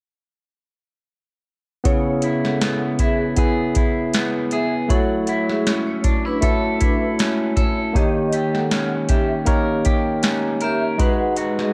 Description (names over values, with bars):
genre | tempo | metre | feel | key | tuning
indie pop, bedroom pop | 79 BPM | 4/4 | swing 55% on 16ths | unclear | A4 = 440 Hz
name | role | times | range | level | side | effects
barky tine electric piano | accompaniment | 1.8-11.7 s | G#3 to E5 | -24 LUFS | equal | cassette tape
vibraphone with medium hard mallets | second line | 1.9-11.7 s | D4 to F#5 | -30 LUFS | equal | ensemble chorus, tape echo
electric guitar at the edge of break-up | accompaniment | 1.9-11.7 s | C#3 to A#4 | -27 LUFS | equal | subtle chorus, warbly pitch drift
soft vintage rhythm box | drums | 1.9-11.7 s | hi-hat, kick drum, snare drum | -24 LUFS | equal | overdrive
room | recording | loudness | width
digital ambience | dark, warm production | -20 LUFS | mono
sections
1.9-11.7 A section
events
none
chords
1.9 C#m7; 4.9 F#m7; 7.9 D#7; 11.0 G#m7